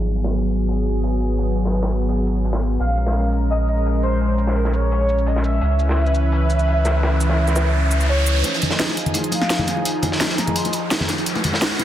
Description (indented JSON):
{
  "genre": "liquid drum and bass",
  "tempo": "170 BPM",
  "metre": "4/4",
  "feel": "straight",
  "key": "unclear",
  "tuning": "A4 = 441 Hz",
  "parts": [
    { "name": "lush unison pad", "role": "sustained chords", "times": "0.0-11.8 s", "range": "Fb3 to Cb5", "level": "-24 LUFS", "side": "equal", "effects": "chorus" },
    { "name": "warm sub bass", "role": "bass", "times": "0.0-8.4 s", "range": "Ab1 to Db2", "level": "-19 LUFS", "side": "equal", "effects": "none" },
    { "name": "crunchy breakbeat drum kit", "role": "drums", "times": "0.1-11.8 s", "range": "hi-hat, snare drum", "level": "-28 LUFS", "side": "equal", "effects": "high-pass filter on hats, low-pass filter on hats, high-pass filter on snare, low-pass filter on snare, high-pass filter on room, low-pass filter on room" },
    { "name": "drum and bass drum kit", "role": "drums", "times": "0.1-11.8 s", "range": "hi-hat, shaker, snare drum", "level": "-23 LUFS", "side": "equal", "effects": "overdrive" },
    { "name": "warm velvety synth lead", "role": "melody", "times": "2.8-11.1 s", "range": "Bb4 to C6", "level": "-25 LUFS", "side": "equal", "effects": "chorus, digital delay" },
    { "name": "riser", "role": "sound effects", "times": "6.5-11.8 s", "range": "none", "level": "-28 LUFS", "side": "right 1 dB", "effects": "none" },
    { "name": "bongos and congas", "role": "percussion", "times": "8.4-11.8 s", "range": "none", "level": "-26 LUFS", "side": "left 2 dB", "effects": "none" }
  ],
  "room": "light reverb, small room ambience",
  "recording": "dense, heavily limited modern master, low-pass filter",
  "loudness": "-17 LUFS",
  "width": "side -12 dB against mid",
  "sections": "0.0-8.4 A section; 8.4-11.8 B section",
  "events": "filter sweep on analog synth pad 0.0-8.4; filter sweep 0.0-8.4; riser 6.5-8.4, 8.4-11.8; build-up 8.4-11.8",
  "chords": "0.0 Abm7; 2.8 Bbm7; 5.6 Dbm7; 8.4 Fm7; 11.3 Abm7",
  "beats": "0.33 0.68 1.03 | 1.38 1.74 2.09 2.44 | 2.79 3.15 3.50 3.85 | 4.21 4.56 4.91 5.27 | 5.62 5.97 6.33 6.68 | 7.03 7.38 7.74 8.09 | 8.44 8.79 9.15 9.50 | 9.85 10.21 10.56 10.91 | 11.27 11.62"
}